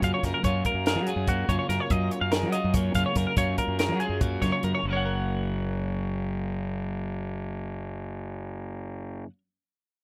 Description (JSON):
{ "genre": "math rock and midwest emo", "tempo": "286 BPM (eighths)", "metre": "7/8", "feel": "straight", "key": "F# major", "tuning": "A4 = 445 Hz", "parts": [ { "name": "twelve-string electric guitar", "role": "accompaniment", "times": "0.0-9.4 s", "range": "F#2 to A#4", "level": "-34 LUFS", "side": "equal", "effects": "none" }, { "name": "twelve-string electric guitar", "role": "arpeggios", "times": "0.0-9.3 s", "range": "F#4 to F#5", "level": "-32 LUFS", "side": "equal", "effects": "none" }, { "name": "fuzz fingered electric bass", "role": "bass", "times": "0.0-9.2 s", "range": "F#1 to F#3", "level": "-32 LUFS", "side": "equal", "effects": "overdrive" }, { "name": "compact cocktail drum kit", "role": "drums", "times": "0.0-4.7 s", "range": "hi-hat, kick drum, snare drum", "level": "-31 LUFS", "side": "equal", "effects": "none" } ], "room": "light reverb", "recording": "rough home demo mix", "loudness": "-28 LUFS", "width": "mono", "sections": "0.0-4.8 A section; 4.8-7.8 B section", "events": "none", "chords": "0.0 F#maj7; 4.8 F#" }